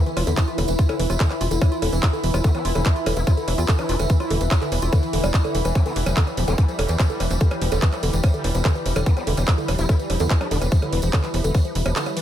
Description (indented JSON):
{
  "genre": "psychedelic trance",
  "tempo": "145 BPM",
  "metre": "4/4",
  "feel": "straight",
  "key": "E phrygian",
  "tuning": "A4 = 440 Hz",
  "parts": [
    { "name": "vowel-sweep wobble bass", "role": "second line", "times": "0.0-10.6 s", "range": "B3 to E4", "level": "-36 LUFS", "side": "left 3 dB", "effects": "none" },
    { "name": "bubbling stepped-filter texture", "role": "sustained chords", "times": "0.0-12.2 s", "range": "E3 to E4", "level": "-30 LUFS", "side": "left 2 dB", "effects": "chorus, built-in reverb, sidechain pumping" },
    { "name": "ethereal airy pad", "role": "texture", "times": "0.0-12.2 s", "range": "E4 to B5", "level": "-30 LUFS", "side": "right 1 dB", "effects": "ensemble chorus, built-in reverb, sidechain pumping" },
    { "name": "woody wave-folded pluck", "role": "riff", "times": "0.1-12.2 s", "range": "D3 to F4", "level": "-28 LUFS", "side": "equal", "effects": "chorus, auto-pan, sidechain pumping, digital delay" },
    { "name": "techno drum kit", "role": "drums", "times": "0.1-12.2 s", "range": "handclaps, hi-hat, percussion blips", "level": "-28 LUFS", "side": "equal", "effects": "none" },
    { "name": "tambourine", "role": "percussion", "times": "0.1-12.1 s", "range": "none", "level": "-37 LUFS", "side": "right 4 dB", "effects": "none" },
    { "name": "tight sequencer bass", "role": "bass", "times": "0.2-11.9 s", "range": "E1 to E2", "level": "-22 LUFS", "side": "equal", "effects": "none" },
    { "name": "electronic kick drum", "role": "drums", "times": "0.4-11.6 s", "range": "none", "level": "-18 LUFS", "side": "equal", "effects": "none" }
  ],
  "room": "digital ambience",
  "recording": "none",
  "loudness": "-18 LUFS",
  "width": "side -11 dB against mid",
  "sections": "0.0-12.2 A section",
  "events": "none",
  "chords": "0.0 E5"
}